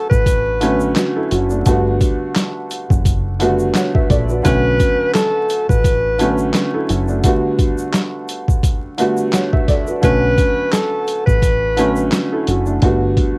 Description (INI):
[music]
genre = hip hop, boom-bap hip-hop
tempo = 86 BPM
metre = 4/4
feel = swing 56% on 16ths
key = B minor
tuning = A4 = 437 Hz
[part]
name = breathy tenor saxophone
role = melody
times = 0.0-12.1 s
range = A4 to B4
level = -18 LUFS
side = equal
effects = high-pass filter, low-pass filter, cassette tape, tape echo
[part]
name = warm upright piano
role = accompaniment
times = 0.0-13.4 s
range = D3 to F#5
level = -18 LUFS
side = right 1 dB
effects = cassette tape, high-pass filter, low-pass filter
[part]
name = deep dub fingered electric bass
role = bass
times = 0.1-13.1 s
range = F#1 to B1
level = -19 LUFS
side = equal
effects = none
[part]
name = boom bap sampler-style drum kit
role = drums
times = 0.1-13.4 s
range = handclaps, hi-hat, kick drum, snare drum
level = -16 LUFS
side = equal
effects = cassette tape
[part]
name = egg shaker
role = percussion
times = 0.1-12.8 s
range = none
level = -37 LUFS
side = left 2 dB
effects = none
[sound]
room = little or no reverb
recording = home recording on cassette, vinyl crackle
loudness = -13 LUFS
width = side -30 dB against mid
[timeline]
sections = 0.0-13.4 A section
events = none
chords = 0.0 Bm7; 1.7 Gmaj7; 4.5 Bm7; 7.2 Gmaj7; 10.0 Bm7; 12.8 Gmaj7